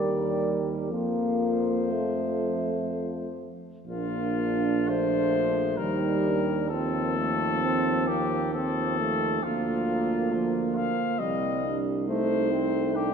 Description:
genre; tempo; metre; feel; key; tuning
classical, hymn-like piece for brass band; 58-69 BPM; 3/4; rubato; Bb major; A4 = 440 Hz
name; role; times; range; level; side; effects
warm flugelhorn; melody; 0.0-13.1 s; F4 to F5; -30 LUFS; left 6 dB; none
mellow French horn section; second line; 0.0-13.1 s; Bb3 to Bb4; -31 LUFS; right 7 dB; none
clear trombone; accompaniment; 0.0-13.1 s; F3 to D4; -33 LUFS; right 4 dB; none
warm euphonium; accompaniment; 0.0-13.1 s; F3 to Bb3; -31 LUFS; left 2 dB; none
warm tuba; bass; 0.0-13.1 s; Bb1 to F2; -32 LUFS; equal; none
room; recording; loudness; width
wet church reverb, RT60 3.2 s; dark, warm production; -24 LUFS; side -6 dB against mid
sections
0.0-3.9 A section; 3.9-13.1 B section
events
none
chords
0.0 Ebmaj7; 0.9 F; 3.9 Bb; 5.8 Eb; 6.7 F7/Eb; 9.4 Bb/D; 11.2 Cm; 12.1 Adim/C

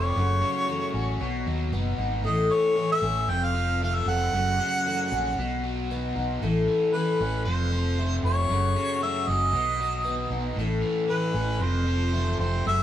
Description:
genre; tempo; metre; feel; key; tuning
rock; 115 BPM; 4/4; straight; A lydian; A4 = 440 Hz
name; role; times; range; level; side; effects
warm harmonica; melody; 0.0-12.8 s; B4 to G5; -27 LUFS; equal; analog delay
picked twelve-string acoustic guitar; accompaniment; 0.0-12.8 s; F#2 to A4; -29 LUFS; left 3 dB; none
biting overdriven guitar; riff; 0.0-12.8 s; F2 to D#4; -32 LUFS; right 1 dB; none
hollow-body short-scale fingered electric bass; bass; 0.0-12.8 s; F1 to D#2; -27 LUFS; right 1 dB; none
room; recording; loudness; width
moderate stone room reverb, RT60 1.0 s; band playing live in one room; -23 LUFS; side -11 dB against mid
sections
0.0-10.6 A section; 10.6-12.8 A section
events
none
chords
0.2 F#m; 1.2 B; 2.3 A; 3.3 F; 4.3 F#m; 5.4 B; 6.4 A; 7.5 F; 8.5 F#m; 9.5 B; 10.6 A; 11.6 F

